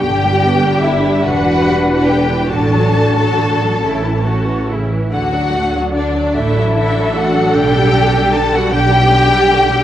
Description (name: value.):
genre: classical, slow romantic movement for string orchestra.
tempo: 44-54 BPM (dotted quarters).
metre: 6/8.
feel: rubato.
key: D major.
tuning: A4 = 439 Hz.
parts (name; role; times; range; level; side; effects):
clear symphonic violin section; melody; 0.0-9.8 s; D5 to A5; -19 LUFS; left 3 dB; none.
rich symphonic violin section; second line; 0.0-9.8 s; D4 to A4; -18 LUFS; left 2 dB; none.
rich symphonic viola section; accompaniment; 0.0-9.8 s; C#3 to D4; -18 LUFS; equal; none.
rich symphonic cello section; bass; 0.0-9.8 s; E4 to B4; -21 LUFS; right 3 dB; none.
warm symphonic double bass section; bass; 0.0-9.7 s; E1 to D2; -17 LUFS; right 2 dB; none.
room: wet concert hall reverb, RT60 2.2 s.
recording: worn, warbling old tape, cassette tape, warbly pitch drift.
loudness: -11 LUFS.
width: side -11 dB against mid.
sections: 0.0-9.8 A section.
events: none.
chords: 0.0 G; 1.2 Em7; 2.5 D/A; 3.8 A; 5.1 D; 7.6 G/B.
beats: | 0.03 1.24 | 2.51 3.83 | 5.11 6.35 | 7.56 8.72.